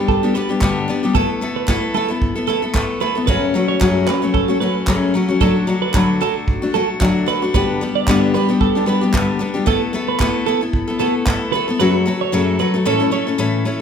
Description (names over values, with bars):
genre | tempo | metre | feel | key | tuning
acoustic pop | 113 BPM | 4/4 | swing 55% on 16ths | unclear | A4 = 441 Hz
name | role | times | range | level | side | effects
picked steel-string acoustic guitar | accompaniment | 0.0-13.8 s | F#2 to A4 | -17 LUFS | left 3 dB | none
twelve-string electric guitar | arpeggios | 0.1-13.3 s | A4 to D5 | -22 LUFS | right 9 dB | none
soft brush drum kit | drums | 0.1-11.4 s | handclaps, kick drum | -20 LUFS | right 1 dB | none
room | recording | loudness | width
moderate recital hall reverb, RT60 1.7 s | recorded in a church or concert hall | -15 LUFS | side -7 dB against mid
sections
0.0-13.8 A section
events
none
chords
0.0 G; 1.2 Asus2; 3.3 F#m; 5.4 D; 7.5 G; 9.7 Asus2; 11.8 F#m; 12.9 A